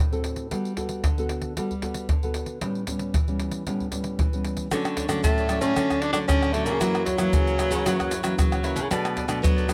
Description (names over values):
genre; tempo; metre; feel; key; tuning
samba and choro; 114 BPM; 4/4; straight; D major; A4 = 440 Hz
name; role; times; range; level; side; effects
nylon-string guitar; accompaniment; 0.0-9.7 s; F#2 to A4; -32 LUFS; equal; none
pandeiro, surdo, tube shaker and tamborim; percussion; 0.1-9.7 s; none; -28 LUFS; equal; none
cavaquinho; accompaniment; 4.7-9.7 s; D4 to F#5; -35 LUFS; equal; none
nylon-string guitar; bass; 4.7-9.7 s; A2 to F#3; -30 LUFS; equal; none
clear tenor saxophone; melody; 5.2-9.7 s; F#3 to D4; -28 LUFS; equal; plate reverb
room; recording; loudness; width
light reverb; close, detailed microphones; -25 LUFS; mono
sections
0.0-4.7 A section; 4.7-9.7 B section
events
none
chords
0.0 D7 (rootless); 0.5 Gmaj9; 2.6 A9; 4.7 Dmaj7; 6.8 F#7; 8.9 Bm7